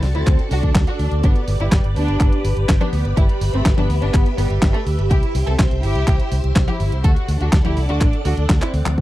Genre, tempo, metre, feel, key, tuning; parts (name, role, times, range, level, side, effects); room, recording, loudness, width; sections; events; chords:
italo disco; 124 BPM; 4/4; straight; G major; A4 = 440 Hz
warm studio violin section; melody; 0.0-8.9 s; G3 to A4; -26 LUFS; equal; tape echo
phased string machine; sustained chords; 0.0-9.0 s; G3 to D6; -27 LUFS; equal; ensemble chorus, phaser, vintage 12-bit sampler grit
fingered electric bass with an envelope filter; bass; 0.0-9.0 s; G1 to D2; -19 LUFS; equal
clean 12-bit digital drum machine; drums; 0.0-9.0 s; handclaps, hi-hat, snare drum, toms; -22 LUFS; left 1 dB; low-pass filter on hats, low-pass filter on cymbals, low-pass filter on snare, low-pass filter on toms
electronic kick drum; drums; 0.3-9.0 s; -17 LUFS; equal
little or no reverb; dry, close 1970s-style studio recording; -15 LUFS; side -15 dB against mid
0.0-9.0 A section
drum fill 8.6-9.0; band accent 8.9
0.0 D; 1.2 G; 5.1 C; 7.0 D